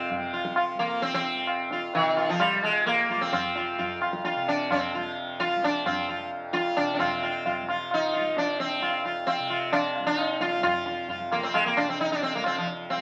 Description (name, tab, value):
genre	indian classical, Hindustani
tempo	131 BPM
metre	4/4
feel	straight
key	F raga kafi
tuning	A4 = 440 Hz
part	sitar	melody	0.0-13.0 s	Eb3 to F4	-28 LUFS	equal	none
part	tanpura	drone	0.0-13.0 s	F2 to F3	-37 LUFS	equal	none
part	tabla	percussion	0.1-13.0 s	none	-32 LUFS	equal	none
room	wet studio reverb, RT60 0.5 s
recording	very old 78 rpm record, vinyl crackle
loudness	-27 LUFS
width	mono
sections	0.0-7.0 A section; 7.0-13.0 B section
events	none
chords	none